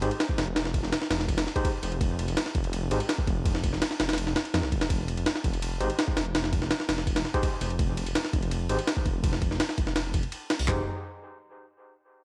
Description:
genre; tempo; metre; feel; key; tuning
drum and bass, jungle; 166 BPM; 4/4; straight; F minor; A4 = 435 Hz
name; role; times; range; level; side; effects
overdriven tine electric piano; stabs; 0.0-3.0, 5.8-10.8 s; Eb4 to C5; -37 LUFS; equal; medium tremolo, low-pass filter, cassette tape, dub echo
detuned saw bass; bass; 0.0-10.9 s; F1 to F2; -33 LUFS; equal; none
jungle sampler-style drum kit; drums; 0.0-10.8 s; handclaps, hi-hat, kick drum, ride cymbal, snare drum, toms; -30 LUFS; equal; overdrive, cassette tape
room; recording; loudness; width
light reverb; home recording on cassette; -28 LUFS; mono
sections
0.0-10.7 A section; 10.7-12.1 B section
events
filter sweep on detuned saw bass 0.0-10.7; filter sweep on tine electric piano 0.0-10.7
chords
0.0 N.C.; 10.7 Fm9

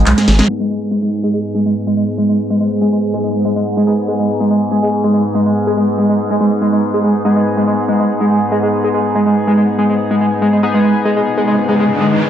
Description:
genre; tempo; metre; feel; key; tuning
driving peak-time techno; 142 BPM; 4/4; straight; G# minor; A4 = 440 Hz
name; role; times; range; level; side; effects
overtone-sweeping drone; drone; 0.0-12.3 s; G#2; -20 LUFS; right 2 dB; chorus, built-in reverb, phaser
overdriven synth lead; riff; 0.1-12.2 s; G#3; -14 LUFS; right 1 dB; distortion, wide subtle chorus, dub echo
techno drum kit; drums; 0.1-0.5 s; handclaps, hi-hat, snare drum; -17 LUFS; equal; low-pass filter on hats, low-pass filter on snare, low-pass filter on room
sync-sweep polysynth; stabs; 0.5-12.3 s; B3 to G#4; -19 LUFS; left 4 dB; chorus, tape echo
riser; sound effects; 11.2-12.3 s; none; -21 LUFS; equal; none
room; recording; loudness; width
wet stone room reverb, RT60 0.9 s; low-pass filter; -12 LUFS; side -9 dB against mid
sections
0.5-12.3 A section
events
drum fill 0.2-0.5; band accent 0.4; filter sweep on analog synth lead 0.5-12.3; filter sweep on analog polysynth 0.5-12.3; filter sweep 0.5-12.3; riser 11.2-12.3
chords
0.5 G#m

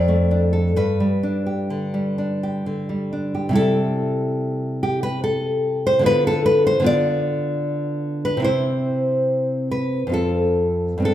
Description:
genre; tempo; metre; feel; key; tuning
romantic piece for solo classical guitar; 63-77 BPM; 3/4; rubato; C major; A4 = 439 Hz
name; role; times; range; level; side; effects
nylon-string guitar; solo; 0.0-11.1 s; F2 to D5; -18 LUFS; equal; none
room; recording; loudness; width
wet recital hall reverb, RT60 1.6 s; recorded in a church or concert hall; -18 LUFS; side -12 dB against mid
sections
0.0-3.6 A section; 3.6-11.1 B section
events
none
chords
0.0 Dm/F; 0.8 G; 3.6 C; 6.1 Dm6; 8.5 C; 10.1 F

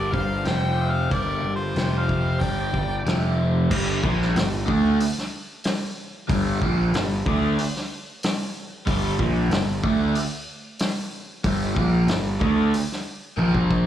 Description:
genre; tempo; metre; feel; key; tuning
blues rock power trio and southern rock; 93 BPM; 4/4; straight; G minor; A4 = 438 Hz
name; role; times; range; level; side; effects
bright harmonica; melody; 0.0-3.1 s; C5 to G5; -29 LUFS; left 1 dB; overdrive, slapback echo
dark smooth lead guitar; second line; 0.0-3.1 s; F4 to D5; -34 LUFS; right 1 dB; overdrive, slapback echo
raw garage guitar; riff; 0.0-13.9 s; F2 to D4; -26 LUFS; equal; overdrive, phaser, slapback echo
fuzz picked electric bass; bass; 0.0-13.9 s; F1 to D2; -22 LUFS; equal; overdrive
vintage drum kit; drums; 0.1-13.9 s; crash cymbal, hi-hat, kick drum, snare drum, toms; -27 LUFS; equal; none
room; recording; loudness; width
studio ambience; live gig heard through the venue's PA, club reverb; -21 LUFS; side -11 dB against mid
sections
0.0-3.7 A section; 3.7-13.9 B section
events
drum fill 13.4-13.9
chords
0.5 F5; 1.1 Gm; 1.8 F5; 2.4 G5; 3.1 F5; 3.7 Gm

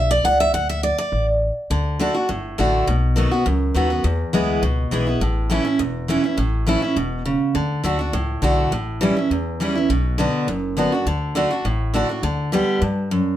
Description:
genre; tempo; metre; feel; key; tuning
bluegrass; 205 BPM; 4/4; straight; D major; A4 = 440 Hz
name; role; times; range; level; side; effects
picked steel-string acoustic guitar; accompaniment; 0.0-13.4 s; E2 to F#5; -19 LUFS; equal; none
upright bass; bass; 0.0-13.2 s; E1 to G2; -23 LUFS; equal; none
room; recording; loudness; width
moderate studio reverb, RT60 0.6 s; none; -18 LUFS; side -12 dB against mid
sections
0.0-1.7 A section; 1.7-13.4 B section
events
steel-string acoustic guitar solo 0.0-1.7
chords
0.0 A (rootless); 0.5 D5; 1.7 D; 2.9 B7; 4.0 E; 5.2 A; 7.6 D; 8.7 A7; 9.9 Bm; 11.1 D; 12.2 G/D

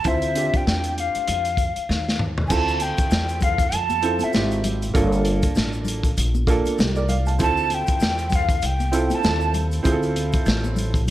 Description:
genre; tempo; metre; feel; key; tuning
hip hop, jazz-hop; 98 BPM; 4/4; swing 58% on 16ths; D minor; A4 = 440 Hz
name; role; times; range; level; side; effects
breathy mellow jazz flute; melody; 0.0-9.6 s; E5 to A5; -24 LUFS; equal; slapback echo
dark upright piano; accompaniment; 0.0-11.0 s; Bb3 to A5; -25 LUFS; right 3 dB; none
upright bass; bass; 0.0-11.1 s; G1 to F2; -24 LUFS; equal; none
crunchy breakbeat drum kit; drums; 0.0-11.1 s; crash cymbal, hi-hat, kick drum, snare drum, toms; -23 LUFS; equal; none
tube shaker and congas; percussion; 2.5-11.1 s; none; -34 LUFS; left 3 dB; none
room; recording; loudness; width
light reverb, studio reverb; none; -19 LUFS; side -14 dB against mid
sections
0.0-2.5 A section; 2.5-11.1 B section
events
drum fill 1.9-2.5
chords
0.0 Dm9; 5.0 Gm9; 7.4 Dm9

